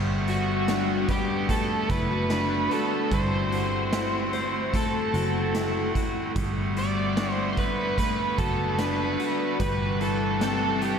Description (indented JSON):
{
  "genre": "dream pop",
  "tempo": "74 BPM",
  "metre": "4/4",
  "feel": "straight",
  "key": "G major",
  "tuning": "A4 = 438 Hz",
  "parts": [
    { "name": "pipe organ, clarinet reed", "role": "sustained chords", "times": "0.0-11.0 s", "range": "C3 to F#5", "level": "-31 LUFS", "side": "right 2 dB", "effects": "none" },
    { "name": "clean electric guitar", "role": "arpeggios", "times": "0.0-11.0 s", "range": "G3 to C5", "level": "-29 LUFS", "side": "left 4 dB", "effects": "lush chorus, tape echo" },
    { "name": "vintage muted picked electric bass", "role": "bass", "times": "0.0-11.0 s", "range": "F#1 to G1", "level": "-31 LUFS", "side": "right 1 dB", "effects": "none" },
    { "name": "overdriven slide guitar", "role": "melody", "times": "0.3-11.0 s", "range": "F#4 to D5", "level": "-28 LUFS", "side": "right 2 dB", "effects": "tape echo" },
    { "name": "raw garage drum kit", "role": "drums", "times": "0.3-11.0 s", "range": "hi-hat, kick drum, snare drum", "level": "-31 LUFS", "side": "right 1 dB", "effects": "none" }
  ],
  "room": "wet lush hall reverb, RT60 3.1 s",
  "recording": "dreamy mix soaked in reverb",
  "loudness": "-23 LUFS",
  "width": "side -7 dB against mid",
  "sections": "0.0-11.0 A section",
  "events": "none",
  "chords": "0.0 Gmaj9; 3.1 D9/G",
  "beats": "0.68 1.49 2.30 | 3.12 3.92 4.74 5.55 | 6.36 7.17 7.98 8.79 | 9.60 10.41"
}